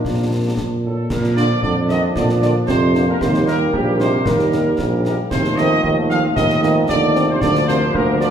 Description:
military-style march for wind band; 114 BPM; 2/4; straight; Bb major; A4 = 445 Hz
dark trumpet section; melody; 0.0-8.3 s; G4 to F5; -22 LUFS; equal
warm French horn section; accompaniment; 0.0-8.3 s; F3 to Eb4; -27 LUFS; left 5 dB
bright trombone section; sustained chords; 0.0-8.3 s; F3 to D4; -25 LUFS; right 1 dB
concert snare drum, concert bass drum and clash cymbals; drums; 0.0-8.3 s; -26 LUFS; left 1 dB
warm tuba; bass; 0.1-8.3 s; Bb1 to Bb2; -18 LUFS; right 1 dB
warm euphonium; second line; 0.8-8.3 s; G2 to F3; -22 LUFS; right 2 dB
wet recital hall reverb, RT60 1.6 s; recorded in a church or concert hall; -15 LUFS; side -8 dB against mid
0.0-1.1 A section; 1.1-8.3 B section
0.0 Bb; 3.2 Eb; 5.3 F7/Eb; 7.4 Bb/D
| 0.05 0.58 | 1.10 1.63 | 2.16 2.68 | 3.21 3.73 | 4.26 4.79 | 5.31 5.84 | 6.37 6.89 | 7.42 7.94

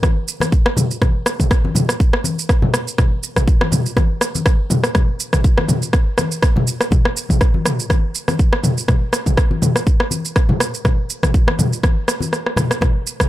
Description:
house; 122 BPM; 4/4; swing 55% on 16ths
electronic kick drum; drums; 0.0-13.3 s; -15 LUFS; equal
house drum kit; drums; 0.0-13.3 s; rim click, shaker, toms; -19 LUFS; equal
congas; percussion; 0.0-12.9 s; -22 LUFS; left 2 dB
little or no reverb; -14 LUFS; side -15 dB against mid
0.0-13.3 A section
kick drops out 12.3-12.8; drum fill 12.3-12.8
0.03 0.52 | 1.02 1.51 2.00 2.49 | 2.98 3.48 3.97 4.46 | 4.95 5.44 5.93 6.43 | 6.92 7.41 7.90 8.39 | 8.88 9.38 9.87 10.36 | 10.85 11.34 11.84 12.33 | 12.82

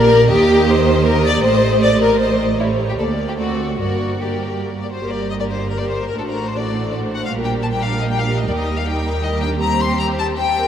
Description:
quick classical-period movement for string orchestra; 156 BPM; 3/4; rubato; G minor; A4 = 441 Hz
rich chamber violin section; melody; 0.0-10.7 s; A4 to C6; -24 LUFS; left 6 dB
rich studio violin section; second line; 0.0-10.7 s; E4 to D5; -18 LUFS; left 2 dB
rich studio viola section; accompaniment; 0.0-10.7 s; G3 to Bb4; -24 LUFS; right 2 dB
clear symphonic double bass section; bass; 0.0-10.7 s; G1 to Eb2; -23 LUFS; right 3 dB
warm symphonic cello section; bass; 0.0-10.7 s; D2 to Eb3; -23 LUFS; right 4 dB
wet cathedral reverb, RT60 5.5 s; in a vast, echoing space; -15 LUFS; side -9 dB against mid
0.0-5.0 A section; 5.0-10.7 B section
0.3 Eb; 1.4 Am7b5; 3.0 Gm/D; 3.4 D7; 3.8 Gm; 6.2 D7/A; 7.3 Gm/Bb; 8.5 Eb; 9.6 Cm7/Eb
| 0.31 0.69 1.07 | 1.45 1.83 2.21 | 2.60 2.99 3.39 | 3.79 4.20 4.61 | 5.01 5.40 5.79 | 6.18 6.57 6.95 | 7.34 7.72 8.10 | 8.48 8.86 9.24 | 9.62 10.00 10.38

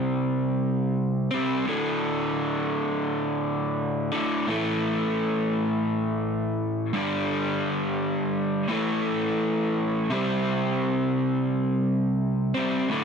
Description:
rock; 85 BPM; 4/4; straight; A4 = 440 Hz
overdriven electric guitar; solo; 0.0-13.0 s; D2 to C4; -23 LUFS; equal; slapback echo
light reverb; dry, close 1970s-style studio recording; -23 LUFS; side -6 dB against mid
0.0-10.1 A section; 10.1-13.0 B section
0.0 C5; 1.7 D5; 4.5 A5; 6.9 G5; 8.7 A5; 10.1 C5
0.27 0.97 | 1.67 2.38 3.08 3.78 | 4.49 5.19 5.89 6.60 | 7.30 8.00 8.71 9.41 | 10.11 10.81 11.51 12.21 | 12.91

